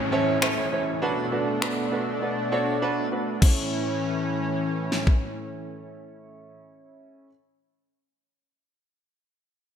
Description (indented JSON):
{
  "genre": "dance-pop",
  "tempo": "100 BPM",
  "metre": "4/4",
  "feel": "straight",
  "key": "A major",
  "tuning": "A4 = 435 Hz",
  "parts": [
    { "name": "warm grand piano", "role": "accompaniment", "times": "0.0-7.3 s", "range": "C#4 to C#5", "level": "-28 LUFS", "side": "right 2 dB", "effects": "lush chorus, sidechain pumping" },
    { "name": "lush unison pad", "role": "sustained chords", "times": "0.0-6.6 s", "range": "A2 to D4", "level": "-28 LUFS", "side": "left 1 dB", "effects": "chorus, sidechain pumping" },
    { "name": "downlifter", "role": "sound effects", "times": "0.0-3.4 s", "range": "none", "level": "-37 LUFS", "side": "left 1 dB", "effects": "none" },
    { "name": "smooth R&B drum kit", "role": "drums", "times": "0.4-5.2 s", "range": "crash cymbal, finger snaps, kick drum, snare drum", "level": "-23 LUFS", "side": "left 1 dB", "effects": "gated reverb" }
  ],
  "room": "moderate lush hall reverb, RT60 1.7 s, digital ambience",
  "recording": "bright 1980s-style digital production",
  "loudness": "-23 LUFS",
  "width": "side -8 dB against mid",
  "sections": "0.0-3.4 A section; 3.4-5.8 B section",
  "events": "silent gap 2.8-3.4",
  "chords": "0.0 A; 1.0 Bm7; 3.4 A"
}